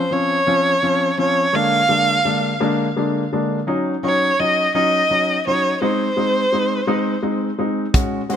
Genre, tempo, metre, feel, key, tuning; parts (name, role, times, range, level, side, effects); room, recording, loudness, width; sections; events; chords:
six-eight pop ballad; 56 BPM (dotted quarters); 6/8; straight; A4 = 440 Hz
warm violin; melody; 0.0-8.4 s; C5 to F5; -18 LUFS; right 1 dB; ping-pong delay
warm baby grand piano; accompaniment; 0.0-8.4 s; D3 to Gb4; -20 LUFS; left 1 dB
natural country drum kit; drums; 7.9-8.4 s; hi-hat, kick drum; -18 LUFS; right 1 dB
light reverb; -16 LUFS; side -8 dB against mid
0.0-8.4 A section
0.0 Dbmaj7; 1.5 Bb7/D; 3.7 Ebm7; 5.8 Ab